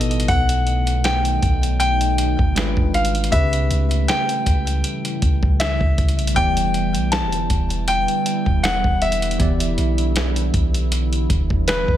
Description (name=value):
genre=contemporary R&B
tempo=79 BPM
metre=4/4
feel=swing 54% on 16ths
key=E dorian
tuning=A4 = 438 Hz
part: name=clear concert grand piano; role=melody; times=0.0-12.0 s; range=B4 to A5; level=-22 LUFS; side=left 2 dB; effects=digital delay
part: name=bell-like tine electric piano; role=accompaniment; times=0.0-12.0 s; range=B2 to D5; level=-27 LUFS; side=left 1 dB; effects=medium stereo tremolo
part: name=deep dark ambient pad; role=sustained chords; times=0.0-12.0 s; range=C#3 to E4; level=-27 LUFS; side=right 2 dB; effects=chorus, built-in reverb, sidechain pumping
part: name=long sustained 808-style bass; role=bass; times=0.0-12.0 s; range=E1 to C#2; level=-21 LUFS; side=equal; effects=none
part: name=dusty soul sampler-style drum kit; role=drums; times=0.0-12.0 s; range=hi-hat, kick drum, snare drum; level=-21 LUFS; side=equal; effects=none
room=little or no reverb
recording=none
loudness=-17 LUFS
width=side -12 dB against mid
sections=0.0-12.0 A section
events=none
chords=0.0 B7; 2.6 G#dim7; 3.3 A7/C#; 6.4 Em7